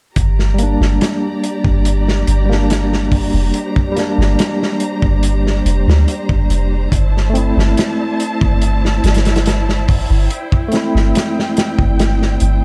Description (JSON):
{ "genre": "trip hop", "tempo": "71 BPM", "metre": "4/4", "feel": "straight", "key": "G dorian", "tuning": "A4 = 440 Hz", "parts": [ { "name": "flickering grainy texture", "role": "texture", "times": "0.7-12.6 s", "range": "D5", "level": "-34 LUFS", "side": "equal", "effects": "built-in reverb" }, { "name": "rich studio string section", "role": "sustained chords", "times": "0.2-12.6 s", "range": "E4 to Bb5", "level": "-28 LUFS", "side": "equal", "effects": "vintage 12-bit sampler grit" }, { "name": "soft 808-style bass", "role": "bass", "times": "0.2-12.6 s", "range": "F1 to D2", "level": "-17 LUFS", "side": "equal", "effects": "none" }, { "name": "crunchy breakbeat drum kit", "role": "drums", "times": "0.2-12.6 s", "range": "hi-hat, kick drum, snare drum", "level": "-20 LUFS", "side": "equal", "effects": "none" }, { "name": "barky tine electric piano", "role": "accompaniment", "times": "0.5-12.6 s", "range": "G3 to E4", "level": "-21 LUFS", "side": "equal", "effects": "overdrive, tremolo, tape echo" } ], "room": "small room ambience", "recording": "dark, warm production", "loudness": "-15 LUFS", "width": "mono", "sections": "0.2-12.6 A section", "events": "none", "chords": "0.2 Gm; 6.9 Am/G" }